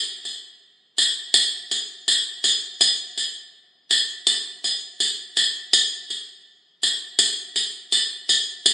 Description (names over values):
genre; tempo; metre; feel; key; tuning
pop; 82 BPM; 4/4; swing 55% on 16ths; none; none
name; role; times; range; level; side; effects
tambourine; percussion; 0.2-8.7 s; none; -17 LUFS; equal; none
room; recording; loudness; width
moderate plate reverb, RT60 2.4 s; recorded on a phone in the room, studio reverb, compression, nothing above 10.9 kHz; -18 LUFS; side -14 dB against mid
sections
0.0-8.7 A section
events
none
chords
none